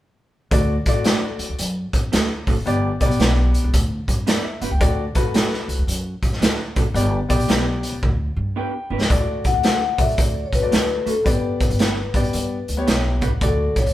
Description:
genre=uptempo 1960s-style soul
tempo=112 BPM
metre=4/4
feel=swing 64% on 8ths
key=D major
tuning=A4 = 439 Hz
part: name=warm concert grand piano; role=accompaniment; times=0.5-13.9 s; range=A3 to G5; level=-25 LUFS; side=left 2 dB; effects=none
part: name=upright bass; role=bass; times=0.5-13.9 s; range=F#1 to G2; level=-24 LUFS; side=equal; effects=none
part: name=raw garage drum kit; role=drums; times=0.5-13.9 s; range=hi-hat, kick drum, snare drum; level=-20 LUFS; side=equal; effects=none
part: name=electric guitar through a small old amp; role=stabs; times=1.1-13.3 s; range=A3 to B4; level=-28 LUFS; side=right 5 dB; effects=none
part: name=vibraphone with soft mallets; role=melody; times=9.1-13.9 s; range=A4 to F#5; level=-23 LUFS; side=left 4 dB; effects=none
room=moderate stone room reverb, RT60 1.1 s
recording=band playing live in one room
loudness=-18 LUFS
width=side -14 dB against mid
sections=0.5-9.1 A section; 9.1-13.9 B section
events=drum fill 8.0-9.1; grand piano fill 8.3-9.1, 12.6-13.4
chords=0.5 D; 2.7 G; 4.8 D; 6.9 G; 9.1 D; 11.3 G; 13.4 D

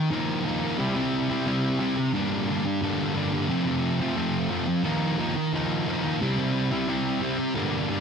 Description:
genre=rock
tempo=89 BPM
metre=4/4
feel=straight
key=unclear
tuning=A4 = 441 Hz
part: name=thick fuzz guitar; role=solo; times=0.0-8.0 s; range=F2 to E4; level=-24 LUFS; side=equal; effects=distortion, analog delay
room=light reverb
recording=none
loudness=-24 LUFS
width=side -6 dB against mid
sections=0.0-8.0 A section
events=none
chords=0.0 Ebsus2; 0.8 C; 2.1 Gm; 3.5 F; 4.8 Ebsus2; 6.2 C

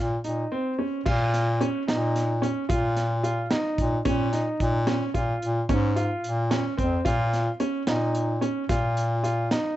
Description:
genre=progressive instrumental, band music in an uneven meter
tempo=220 BPM (eighths)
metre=11/8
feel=straight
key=Bb minor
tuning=A4 = 437 Hz
part: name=warm concert grand piano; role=arpeggios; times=0.0-9.8 s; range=C4 to F4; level=-27 LUFS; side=right 1 dB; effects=none
part: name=warm bass clarinet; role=bass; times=0.0-9.6 s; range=F2 to Bb2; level=-25 LUFS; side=left 1 dB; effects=none
part: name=crunchy breakbeat drum kit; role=drums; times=0.2-9.6 s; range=crash cymbal, hi-hat, kick drum, snare drum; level=-30 LUFS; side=right 1 dB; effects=none
room=little or no reverb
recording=nothing above 8.0 kHz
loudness=-23 LUFS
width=side -14 dB against mid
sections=0.0-1.1 A section; 1.1-9.8 B section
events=none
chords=0.0 Cm/Bb; 1.1 Bbm

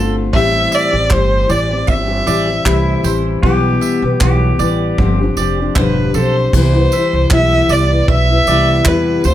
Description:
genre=acoustic pop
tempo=77 BPM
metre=4/4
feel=swing 55% on 16ths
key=C major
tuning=A4 = 442 Hz
part: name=fingerpicked steel-string acoustic guitar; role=accompaniment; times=0.0-9.3 s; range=G2 to G4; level=-17 LUFS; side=left 4 dB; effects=none
part: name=mandolin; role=arpeggios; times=0.0-9.3 s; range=A4 to E5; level=-22 LUFS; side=right 7 dB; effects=none
part: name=upright bass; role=bass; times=0.0-9.3 s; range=E1 to E2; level=-16 LUFS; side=right 1 dB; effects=none
part: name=warm violin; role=melody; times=0.3-9.3 s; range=B4 to E5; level=-16 LUFS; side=equal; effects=plate reverb
part: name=soft brush drum kit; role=drums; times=0.3-9.3 s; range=crash cymbal, handclaps, kick drum, tambourine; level=-17 LUFS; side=right 1 dB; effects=none
part: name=pedal steel guitar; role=second line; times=2.7-5.7 s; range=E4 to G4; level=-23 LUFS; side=equal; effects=none
room=light reverb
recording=none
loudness=-11 LUFS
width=side -12 dB against mid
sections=0.0-6.5 A section; 6.5-9.3 B section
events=none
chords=0.3 Am7; 3.4 Em/B; 5.0 G7sus4; 6.5 Cmaj7

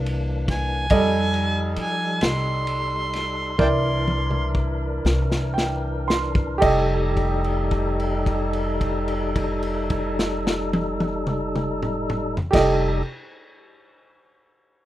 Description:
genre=slow blues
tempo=36-48 BPM (dotted quarters)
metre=12/8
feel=straight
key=F mixolydian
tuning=A4 = 440 Hz
part: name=clear upright piano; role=accompaniment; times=0.0-13.0 s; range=G3 to C6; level=-24 LUFS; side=right 3 dB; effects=none
part: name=tonewheel organ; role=sustained chords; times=0.0-13.0 s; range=E3 to Bb4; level=-27 LUFS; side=equal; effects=slow rotary speaker, overdrive
part: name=upright bass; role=bass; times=0.0-13.0 s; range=F1 to F3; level=-26 LUFS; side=left 1 dB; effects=none
part: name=crunchy breakbeat drum kit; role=drums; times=0.1-12.8 s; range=crash cymbal, kick drum, ride cymbal, snare drum, toms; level=-26 LUFS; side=left 1 dB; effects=none
part: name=warm harmonica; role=melody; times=0.5-4.5 s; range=G5 to C6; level=-26 LUFS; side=right 1 dB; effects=overdrive, analog delay
room=little or no reverb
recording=rough home demo mix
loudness=-20 LUFS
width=side -14 dB against mid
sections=0.0-6.6 A section; 6.6-13.2 B section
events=slowing down 0.0-6.6; harmonica solo 0.0-6.6; drum fill 3.6-6.6; upright piano fill 5.1-6.6; held note 6.6-12.5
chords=0.0 C9; 0.9 F9; 3.6 C9; 6.6 F9

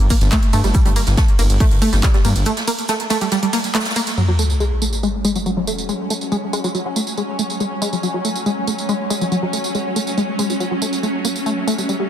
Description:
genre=driving peak-time techno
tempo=140 BPM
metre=4/4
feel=straight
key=F# minor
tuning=A4 = 440 Hz
part: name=detuned saw bass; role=bass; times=0.0-2.4 s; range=G1 to G2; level=-18 LUFS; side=equal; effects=sidechain pumping
part: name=techno drum kit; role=drums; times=0.0-12.0 s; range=handclaps, hi-hat, ride cymbal, tambourine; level=-25 LUFS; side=right 3 dB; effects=sidechain pumping on hats, sidechain pumping on perc, sidechain pumping on cymbals
part: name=tight sequenced synth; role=riff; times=0.1-12.1 s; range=F#3 to Bb3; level=-21 LUFS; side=equal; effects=chorus, sidechain pumping, dub echo
part: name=electronic kick drum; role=drums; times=0.1-2.1 s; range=none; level=-15 LUFS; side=equal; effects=none
part: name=jazz brush drum kit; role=drums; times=0.1-4.2 s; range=hi-hat, shaker, snare drum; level=-28 LUFS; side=right 1 dB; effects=sidechain pumping on hats, high-pass filter on hats, soft clipping on snare, high-pass filter on snare, sidechain pumping on perc, high-pass filter on perc, high-pass filter on room
part: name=swarming drone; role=drone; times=5.2-12.1 s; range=F#3 to C#4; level=-24 LUFS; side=equal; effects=built-in reverb, phaser, sidechain pumping
part: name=sub drop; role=sound effects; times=4.2-5.9 s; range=none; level=-20 LUFS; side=equal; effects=none
room=moderate lush hall reverb, RT60 2.3 s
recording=dense, heavily limited modern master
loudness=-16 LUFS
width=side -10 dB against mid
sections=0.0-4.2 A section; 4.2-12.1 B section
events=drop 0.0-4.2; break 2.5-4.2; band accent 3.7; impact 4.2-5.9; filter sweep on synth arpeggio sound 4.2-12.1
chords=0.0 N.C.; 4.2 F#5; 11.0 N.C.

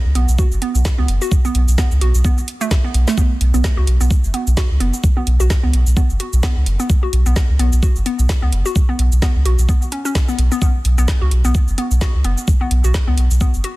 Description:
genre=minimal techno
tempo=129 BPM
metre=4/4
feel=swing 57% on 16ths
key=unclear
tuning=A4 = 440 Hz
part: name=round analog bass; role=bass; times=0.1-13.6 s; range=F#1 to C#2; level=-14 LUFS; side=equal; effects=sidechain pumping
part: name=hollow square pluck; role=riff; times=0.2-13.7 s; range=A3 to F#4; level=-24 LUFS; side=equal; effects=chorus, sidechain pumping, dub echo
part: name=garage drum kit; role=drums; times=0.2-13.7 s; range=cabasa, hi-hat, snare drum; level=-26 LUFS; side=right 1 dB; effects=overdrive, studio reverb
part: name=electronic kick drum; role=drums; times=0.4-13.5 s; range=none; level=-16 LUFS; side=equal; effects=overdrive, studio reverb
room=digital ambience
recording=dense, heavily limited modern master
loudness=-14 LUFS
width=side -19 dB against mid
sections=0.0-13.8 A section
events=none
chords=0.0 B5

